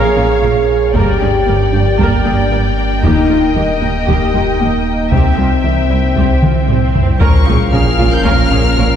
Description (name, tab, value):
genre	cinematic, hybrid orchestral and electronic film score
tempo	115 BPM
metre	4/4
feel	straight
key	Bb dorian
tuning	A4 = 440 Hz
part	rich symphonic violin section	second line	0.0-9.0 s	Bb4 to G5	-20 LUFS	left 3 dB	none
part	warm symphonic viola section	accompaniment	0.0-8.9 s	Bb3 to Bb4	-22 LUFS	right 2 dB	none
part	dark French horn section	sustained chords	0.0-9.0 s	Bb3 to Ab4	-18 LUFS	left 1 dB	none
part	ethereal airy pad	sustained chords	0.0-9.0 s	F3 to G5	-22 LUFS	right 1 dB	ensemble chorus, built-in reverb, phaser
part	tight sequenced synth	arpeggios	0.0-8.9 s	C3 to F4	-23 LUFS	right 1 dB	chorus, tape echo
part	sub bass with octave	bass	0.0-9.0 s	Eb1 to C2	-18 LUFS	equal	none
part	warm concert grand piano	texture	0.0-9.0 s	G4 to C6	-28 LUFS	left 2 dB	tape echo
part	dark symphonic cello section	bass	0.2-8.9 s	C2 to Bb2	-22 LUFS	right 3 dB	none
part	rich symphonic double bass section	bass	0.2-8.9 s	G1 to Eb2	-21 LUFS	right 3 dB	none
part	taiko ensemble	drums	0.9-9.0 s	none	-17 LUFS	equal	none
part	swell and sub drop	sound effects	6.3-9.0 s	none	-22 LUFS	left 1 dB	none
part	warm symphonic violin section	melody	7.2-9.0 s	Db6 to G6	-20 LUFS	left 4 dB	none
part	dark trombone section	sustained chords	7.2-9.0 s	Bb2 to F3	-23 LUFS	equal	none
room	wet scoring stage reverb, RT60 1.7 s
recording	heard from further back in the room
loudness	-10 LUFS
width	side -9 dB against mid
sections	0.0-7.2 A section; 7.2-9.0 A section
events	swell 6.3-7.2; drum fill 6.4-7.2; impact 7.2-9.0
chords	0.0 Bbm; 0.9 Gm; 3.0 Eb; 5.1 C; 7.2 Bbm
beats	0.43 | 0.95 1.47 1.99 2.52 | 3.04 3.56 4.08 4.60 | 5.12 5.64 6.17 6.69 | 7.21 7.73 8.25 8.78